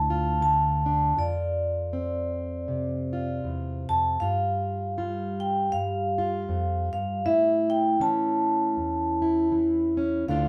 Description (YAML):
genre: folk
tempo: 79 BPM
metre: 4/4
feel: swing 58% on 8ths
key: unclear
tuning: A4 = 440 Hz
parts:
  - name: vibraphone with medium hard mallets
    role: melody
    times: 0.0-10.5 s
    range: D5 to A5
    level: -28 LUFS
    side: equal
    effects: none
  - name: fingerpicked plugged-in steel-string acoustic guitar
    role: accompaniment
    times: 0.0-10.5 s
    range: D2 to F4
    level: -29 LUFS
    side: equal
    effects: none
room: wet studio reverb, RT60 0.6 s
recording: band playing live in one room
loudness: -26 LUFS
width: mono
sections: 0.0-10.5 A section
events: none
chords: 0.0 Dm; 1.2 F5; 4.2 Fsus2; 7.2 A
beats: 0.42 | 1.17 1.93 2.69 3.45 | 4.21 4.97 5.73 6.49 | 7.25 8.00 8.76 9.52 | 10.28